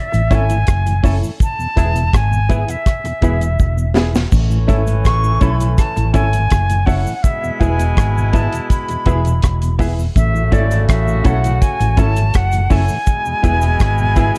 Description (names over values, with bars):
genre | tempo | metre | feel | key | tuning
roots reggae | 82 BPM | 4/4 | straight | A major | A4 = 440 Hz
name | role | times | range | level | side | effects
silver concert flute | melody | 0.0-14.4 s | D5 to C#6 | -24 LUFS | equal | tape echo
mellow tonewheel organ | accompaniment | 0.1-14.3 s | E2 to E4 | -29 LUFS | equal | slow rotary speaker
semi-hollow electric guitar | accompaniment | 0.1-14.3 s | B3 to A4 | -28 LUFS | equal | vibrato effect, tape echo
vintage muted fingered electric bass | bass | 0.1-14.3 s | E1 to B1 | -18 LUFS | equal | none
deep reggae drum kit | drums | 0.1-14.4 s | hi-hat, kick drum, rim click, snare drum, splash cymbal | -18 LUFS | equal | none
cabasa | percussion | 0.1-14.4 s | none | -41 LUFS | equal | none
dark baby grand piano | stabs | 0.3-14.4 s | E4 to E5 | -28 LUFS | equal | none
warm horn section | second line | 4.3-14.4 s | B2 to F#4 | -28 LUFS | equal | tape echo
room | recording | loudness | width
light reverb | dark, warm production | -16 LUFS | mono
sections
0.0-14.4 A section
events
drum fill 3.6-4.3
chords
0.0 A; 1.4 E; 4.3 A; 7.2 E; 10.2 A; 13.1 E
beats
0.68 | 1.41 2.14 2.87 3.59 | 4.32 5.05 5.78 6.51 | 7.24 7.97 8.70 9.43 | 10.16 10.89 11.62 12.35 | 13.07 13.80